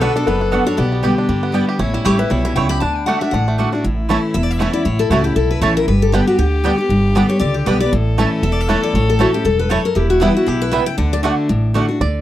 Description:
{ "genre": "bluegrass", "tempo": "235 BPM", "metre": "4/4", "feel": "swing 56% on 8ths", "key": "unclear", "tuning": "A4 = 441 Hz", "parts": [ { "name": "bluegrass banjo", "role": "melody", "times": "0.0-12.2 s", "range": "G3 to D5", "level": "-24 LUFS", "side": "right 4 dB", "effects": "none" }, { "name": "picked steel-string acoustic guitar", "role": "melody", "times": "0.0-11.2 s", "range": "E4 to B5", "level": "-21 LUFS", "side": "left 3 dB", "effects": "none" }, { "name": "rich fiddle", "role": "second line", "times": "0.0-11.9 s", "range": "D4 to B4", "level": "-24 LUFS", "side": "left 4 dB", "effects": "none" }, { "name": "picked steel-string acoustic guitar", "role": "accompaniment", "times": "0.0-12.2 s", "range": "E2 to G4", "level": "-18 LUFS", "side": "left 1 dB", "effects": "none" }, { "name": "mandolin", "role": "stabs", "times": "0.0-11.9 s", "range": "A3 to A5", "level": "-21 LUFS", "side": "right 7 dB", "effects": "none" }, { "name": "upright bass", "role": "bass", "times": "0.0-12.2 s", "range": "E1 to G2", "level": "-19 LUFS", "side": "right 1 dB", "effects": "none" } ], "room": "light reverb", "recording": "dry, close 1970s-style studio recording", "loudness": "-14 LUFS", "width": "side -13 dB against mid", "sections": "0.0-3.8 A section; 3.8-12.0 B section", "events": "none", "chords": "0.0 Bm; 0.8 G/B; 1.8 A7; 2.8 D; 3.8 A; 5.9 G; 7.9 A; 10.0 Em; 11.0 D" }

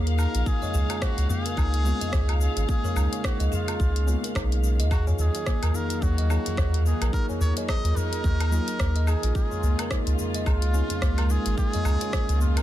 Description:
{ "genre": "organic downtempo", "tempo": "108 BPM", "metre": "4/4", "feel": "swing 58% on 16ths", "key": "unclear", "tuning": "A4 = 444 Hz", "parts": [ { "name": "muted studio string section", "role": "sustained chords", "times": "0.0-12.6 s", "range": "Db3 to F5", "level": "-35 LUFS", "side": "equal", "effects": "sidechain pumping" }, { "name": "kalimba", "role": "arpeggios", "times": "0.0-12.6 s", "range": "Bb3 to Eb5", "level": "-32 LUFS", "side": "right 1 dB", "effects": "tape echo" }, { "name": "warm sub bass", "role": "bass", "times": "0.0-12.6 s", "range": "Ab1 to Eb2", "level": "-23 LUFS", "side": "equal", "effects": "sidechain pumping" }, { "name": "deep house drum kit", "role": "drums", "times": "0.1-12.6 s", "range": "hi-hat, rim click, shaker, woodblock", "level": "-34 LUFS", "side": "left 1 dB", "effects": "soft clipping on snare" }, { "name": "trumpet with cup mute", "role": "melody", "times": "0.2-12.6 s", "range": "F4 to Eb5", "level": "-35 LUFS", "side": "equal", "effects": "digital delay" }, { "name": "electronic kick drum", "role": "drums", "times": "0.5-12.3 s", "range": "none", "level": "-26 LUFS", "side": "equal", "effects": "none" }, { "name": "tabla", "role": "percussion", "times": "0.6-12.5 s", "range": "none", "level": "-33 LUFS", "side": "left 2 dB", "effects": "none" }, { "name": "muted felt-like synth keys", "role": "accompaniment", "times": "1.8-10.9 s", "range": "Gb3 to F4", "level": "-39 LUFS", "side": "left 3 dB", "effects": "none" } ], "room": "studio reverb", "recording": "dense, heavily limited modern master", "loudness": "-22 LUFS", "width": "side -13 dB against mid", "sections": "0.0-12.6 A section", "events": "none", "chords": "0.5 Db7; 4.9 Ebmadd9; 9.4 Db" }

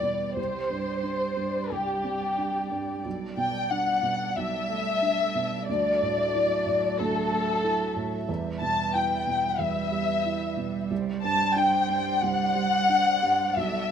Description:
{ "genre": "neoclassical piano and strings", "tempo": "91 BPM", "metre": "4/4", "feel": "rubato", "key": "unclear", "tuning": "A4 = 440 Hz", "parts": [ { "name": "dark studio violin section", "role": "melody", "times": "0.0-13.9 s", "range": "G4 to A5", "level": "-25 LUFS", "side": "left 2 dB", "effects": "none" }, { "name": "dark cello", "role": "second line", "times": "0.0-13.9 s", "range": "F#3 to G3", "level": "-34 LUFS", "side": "right 8 dB", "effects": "none" }, { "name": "felt-muted upright piano", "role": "accompaniment", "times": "0.0-13.9 s", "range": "B1 to E4", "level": "-32 LUFS", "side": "right 5 dB", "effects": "none" }, { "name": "dark chamber string section", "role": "sustained chords", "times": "0.0-13.9 s", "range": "G3 to E5", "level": "-39 LUFS", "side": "right 3 dB", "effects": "none" } ], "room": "light reverb", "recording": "rough home demo mix", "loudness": "-24 LUFS", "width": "side -8 dB against mid", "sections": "0.0-13.9 A section", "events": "none", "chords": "0.4 Csus2; 3.1 Gadd9/B; 5.7 Dadd9; 8.3 Em; 10.9 Csus2" }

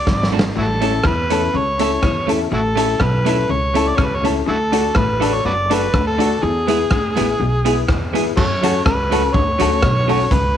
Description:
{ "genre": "ska", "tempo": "123 BPM", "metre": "4/4", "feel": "swing 53% on 8ths", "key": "A major", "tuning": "A4 = 439 Hz", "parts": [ { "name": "overdriven harmonica", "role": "melody", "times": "0.0-10.6 s", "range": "E4 to D5", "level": "-20 LUFS", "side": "equal", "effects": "none" }, { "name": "clean electric guitar", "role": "accompaniment", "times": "0.1-10.2 s", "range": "F#3 to A4", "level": "-24 LUFS", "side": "right 11 dB", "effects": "lush chorus" }, { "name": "electric guitar through a small old amp", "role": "riff", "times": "0.1-10.5 s", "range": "F#2 to F#3", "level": "-28 LUFS", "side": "left 11 dB", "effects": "tape echo" }, { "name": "upright bass", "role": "bass", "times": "0.1-10.6 s", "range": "F#1 to F#2", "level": "-21 LUFS", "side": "equal", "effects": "none" }, { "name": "raw garage drum kit", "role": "drums", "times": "0.1-10.4 s", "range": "crash cymbal, hi-hat, kick drum, rim click, snare drum", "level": "-21 LUFS", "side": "equal", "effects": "none" }, { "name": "warm upright piano", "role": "stabs", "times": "0.8-10.2 s", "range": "B3 to A4", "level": "-22 LUFS", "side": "left 10 dB", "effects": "none" } ], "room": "light reverb, studio reverb", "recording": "1960s-style stereo with parts hard left and right", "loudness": "-15 LUFS", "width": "side -10 dB against mid", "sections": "0.0-8.4 A section; 8.4-10.6 B section", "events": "drum fill 0.1-0.6", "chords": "0.0 D; 0.6 A; 4.5 D; 6.4 E; 8.4 F#m" }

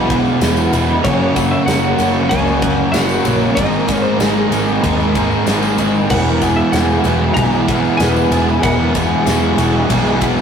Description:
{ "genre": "rock, shoegaze and dream pop", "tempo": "95 BPM", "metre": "4/4", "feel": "straight", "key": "E lydian", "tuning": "A4 = 442 Hz", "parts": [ { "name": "twelve-string electric guitar", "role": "melody", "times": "0.0-9.9 s", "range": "G#4 to A#5", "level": "-24 LUFS", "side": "equal", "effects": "none" }, { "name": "string machine, cellos", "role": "sustained chords", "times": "0.0-10.4 s", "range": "E4 to C#6", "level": "-24 LUFS", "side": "left 1 dB", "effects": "ensemble chorus" }, { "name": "crunchy overdriven guitar", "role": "riff", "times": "0.0-10.4 s", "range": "E2 to G#4", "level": "-16 LUFS", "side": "right 4 dB", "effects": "none" }, { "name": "thick fuzz guitar", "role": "riff", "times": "0.0-10.4 s", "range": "E2 to G#3", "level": "-20 LUFS", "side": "left 6 dB", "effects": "distortion" }, { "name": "vintage muted picked electric bass", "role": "bass", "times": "0.0-10.4 s", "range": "E1 to D#2", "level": "-21 LUFS", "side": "equal", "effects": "none" }, { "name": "huge arena drum kit", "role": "drums", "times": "0.1-10.4 s", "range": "crash cymbal, kick drum, ride cymbal, snare drum", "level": "-21 LUFS", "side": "left 1 dB", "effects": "none" }, { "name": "tambourine", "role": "percussion", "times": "0.3-10.4 s", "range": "none", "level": "-35 LUFS", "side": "left 7 dB", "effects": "none" }, { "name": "picked twelve-string acoustic guitar", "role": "arpeggios", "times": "6.1-10.4 s", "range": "E4 to B4", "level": "-24 LUFS", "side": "left 5 dB", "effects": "none" } ], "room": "wet studio reverb, RT60 0.5 s", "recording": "rough rehearsal-room recording", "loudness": "-12 LUFS", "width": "side -7 dB against mid", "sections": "0.0-10.4 A section", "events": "none", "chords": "0.0 Eadd9; 1.0 F#; 3.6 G#add9; 6.1 Eadd9" }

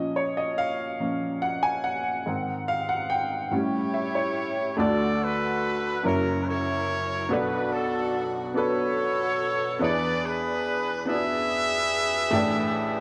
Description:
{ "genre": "gospel", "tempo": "48 BPM (dotted quarters)", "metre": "6/8", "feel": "straight", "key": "D major from 4.8 s", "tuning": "A4 = 439 Hz", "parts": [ { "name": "warm upright piano", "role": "accompaniment", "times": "0.0-13.0 s", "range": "F#1 to Ab5", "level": "-29 LUFS", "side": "equal", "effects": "none" }, { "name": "warm horn section", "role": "melody", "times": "3.5-13.0 s", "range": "C#4 to E5", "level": "-28 LUFS", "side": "equal", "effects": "none" } ], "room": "wet large studio reverb, RT60 1.5 s", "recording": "none", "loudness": "-26 LUFS", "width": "mono", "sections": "0.0-4.8 A section; 4.8-13.0 B section", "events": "upright piano solo 0.0-4.8", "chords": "0.0 Bbm; 2.3 Ab; 3.5 A7; 4.8 D; 6.0 F#7; 7.3 Bm7; 9.8 E7; 12.3 A7sus4" }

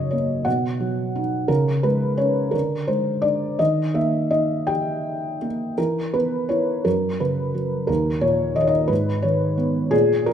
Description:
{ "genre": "classical, lyrical solo piano", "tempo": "54-60 BPM (dotted quarters)", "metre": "6/8", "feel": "rubato", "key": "G# minor", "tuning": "A4 = 440 Hz", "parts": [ { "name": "felt-muted upright piano", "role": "solo", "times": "0.0-10.3 s", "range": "D#2 to G5", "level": "-19 LUFS", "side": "equal", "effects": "none" } ], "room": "moderate recital hall reverb, RT60 1.4 s", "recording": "minimal, uncompressed stereo recording", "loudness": "-19 LUFS", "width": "side -9 dB against mid", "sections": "0.0-10.3 A section", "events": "none", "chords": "0.5 B; 1.5 C#5; 2.5 A#9/D; 3.6 D#; 5.8 E5; 6.9 F#5; 7.9 D#5; 8.9 G#m" }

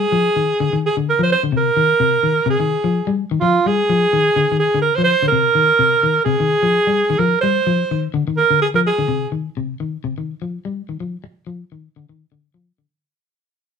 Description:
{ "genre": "afrobeat", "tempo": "127 BPM", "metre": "4/4", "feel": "swing 55% on 16ths", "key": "F dorian", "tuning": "A4 = 442 Hz", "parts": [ { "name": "breathy alto saxophone", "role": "melody", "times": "0.0-9.3 s", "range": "F4 to C5", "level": "-16 LUFS", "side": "right 3 dB", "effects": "none" }, { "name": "electric guitar at the edge of break-up", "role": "arpeggios", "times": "0.0-12.9 s", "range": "C3 to G3", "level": "-20 LUFS", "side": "left 6 dB", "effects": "none" } ], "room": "moderate studio reverb, RT60 0.6 s", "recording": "band playing live in one room", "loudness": "-15 LUFS", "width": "side -6 dB against mid", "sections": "0.0-9.1 A section; 9.1-12.9 B section", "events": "fade-out 9.1-12.9", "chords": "0.0 Fsus2; 9.1 F5" }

